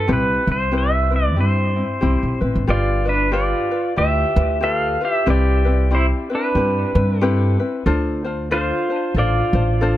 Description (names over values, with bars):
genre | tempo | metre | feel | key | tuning
Hawaiian | 93 BPM | 4/4 | swing 60% on 8ths | C major | A4 = 441 Hz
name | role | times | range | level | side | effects
pedal steel guitar | melody | 0.0-10.0 s | D4 to F5 | -21 LUFS | equal | ping-pong delay
ukulele | accompaniment | 0.0-10.0 s | C4 to C5 | -23 LUFS | left 3 dB | none
upright bass | bass | 0.0-10.0 s | G1 to G2 | -19 LUFS | equal | none
room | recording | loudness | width
small room ambience | none | -16 LUFS | side -13 dB against mid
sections
0.0-2.7 A section; 2.7-10.0 B section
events
none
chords
0.1 Cmaj7; 2.7 G13; 5.3 Cmaj7; 7.9 Dm7